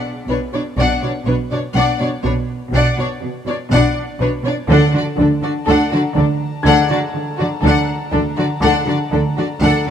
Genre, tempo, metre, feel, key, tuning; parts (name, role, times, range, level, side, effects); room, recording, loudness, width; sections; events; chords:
cinematic; 61 BPM; 4/4; straight; A4 = 441 Hz
rich chamber violin section; melody; 0.0-9.9 s; A4 to F#5; -22 LUFS; left 5 dB
warm studio violin section; second line; 0.0-9.9 s; D4 to D5; -23 LUFS; left 1 dB
rich studio viola section; accompaniment; 0.0-9.9 s; D4; -22 LUFS; left 1 dB
rich studio cello section; riff; 0.0-9.9 s; B2 to D4; -22 LUFS; right 2 dB
warm grand piano; texture; 0.0-9.9 s; D6 to B6; -32 LUFS; left 1 dB
dark chamber double bass section; bass; 0.3-9.7 s; B1 to D2; -21 LUFS; right 2 dB
warm chamber cello section; bass; 0.3-9.9 s; B2 to D3; -21 LUFS; equal
clear studio violin section; texture; 4.7-9.9 s; A5 to Bb5; -31 LUFS; left 4 dB
moderate scoring stage reverb, RT60 1.9 s; -14 LUFS; side -8 dB against mid
0.0-9.9 A section
0.0 Bm; 4.7 D